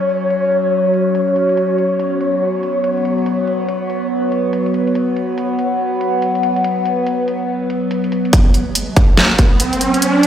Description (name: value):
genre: deep dubstep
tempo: 142 BPM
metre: 4/4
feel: swing 62% on 16ths, half-time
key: unclear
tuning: A4 = 441 Hz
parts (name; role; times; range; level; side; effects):
- overtone-sweeping drone; sustained chords; 0.0-10.3 s; F#3 to C#4; -17 LUFS; equal; chorus, built-in reverb, phaser
- wind-like tuned noise texture; texture; 0.0-8.3 s; C#5; -20 LUFS; left 1 dB; built-in reverb
- dubstep drum kit; drums; 0.1-10.3 s; hi-hat, snare drum; -18 LUFS; equal; overdrive, low-pass filter on hats, low-pass filter on snare, low-pass filter on room
- electronic kick drum; drums; 8.3-9.5 s; none; -11 LUFS; equal; overdrive
- riser; sound effects; 9.1-10.3 s; none; -16 LUFS; right 2 dB; none
room: moderate huge ambient reverb, RT60 4.0 s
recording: played on a big sound system in a bare room, stone room reverb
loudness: -14 LUFS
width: side -10 dB against mid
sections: 0.0-8.3 A section; 8.3-10.3 B section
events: build-up 8.3-10.3; riser 9.1-10.3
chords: 0.0 F#5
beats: 0.30 0.73 1.15 | 1.57 2.00 2.42 2.84 | 3.26 3.69 4.11 4.53 | 4.95 5.38 5.80 6.22 | 6.64 7.07 7.49 7.91 | 8.33 8.76 9.18 9.60 | 10.02